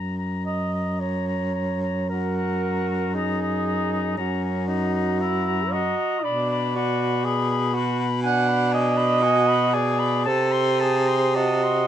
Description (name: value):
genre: classical, lyrical piece for single-reed quartet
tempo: 53-61 BPM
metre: 4/4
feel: rubato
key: F# major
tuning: A4 = 439 Hz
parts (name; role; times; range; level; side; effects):
- clear clarinet; melody; 0.0-11.9 s; G#5 to C6; -29 LUFS; left 8 dB; none
- clear baritone saxophone; bass; 0.0-11.9 s; F#2 to C3; -24 LUFS; right 1 dB; none
- mellow alto saxophone; second line; 0.5-11.9 s; F#4 to F#5; -25 LUFS; right 5 dB; none
- warm tenor saxophone; accompaniment; 2.1-11.9 s; C#4 to A4; -27 LUFS; left 2 dB; none
room: light reverb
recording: none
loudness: -20 LUFS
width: side -10 dB against mid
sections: 0.0-11.9 A section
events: none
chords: 0.0 F#; 6.2 Bm; 10.3 Cdim7